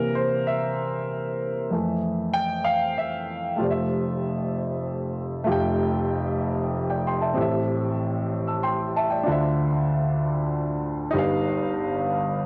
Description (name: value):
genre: gospel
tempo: 64 BPM (dotted quarters)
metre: 6/8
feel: straight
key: F major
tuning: A4 = 440 Hz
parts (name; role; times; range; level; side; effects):
- warm baby grand piano; solo; 0.0-12.5 s; F1 to E6; -25 LUFS; equal; cassette tape
room: light reverb, small room ambience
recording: home recording on cassette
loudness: -25 LUFS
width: mono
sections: 0.0-3.6 A section; 3.6-7.4 B section; 7.4-12.5 C section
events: grand piano solo 0.0-3.6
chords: 0.0 C7; 1.7 Fmaj7; 3.6 Fmaj9; 7.4 Am7; 9.3 Dm9; 11.1 Gaug7